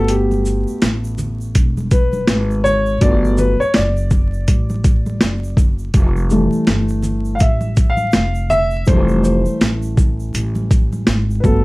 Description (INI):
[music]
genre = hip hop, jazz-hop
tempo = 82 BPM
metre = 4/4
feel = swing 59% on 16ths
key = unclear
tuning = A4 = 440 Hz
[part]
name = dark grand piano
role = accompaniment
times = 0.0-11.6 s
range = E3 to F5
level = -19 LUFS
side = left 1 dB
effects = none
[part]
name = upright bass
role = bass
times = 0.0-11.6 s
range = E1 to A1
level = -19 LUFS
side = equal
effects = none
[part]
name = boom bap sampler-style drum kit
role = drums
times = 0.1-11.6 s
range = hi-hat, kick drum, shaker, snare drum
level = -14 LUFS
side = equal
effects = overdrive
[part]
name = egg shaker and congas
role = percussion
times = 0.1-11.6 s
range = none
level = -30 LUFS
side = right 1 dB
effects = none
[sound]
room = light reverb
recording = vinyl crackle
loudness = -14 LUFS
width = side -21 dB against mid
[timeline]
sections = 0.0-11.6 A section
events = grand piano solo 0.0-11.6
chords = 0.0 Gmaj9; 5.9 Fmaj9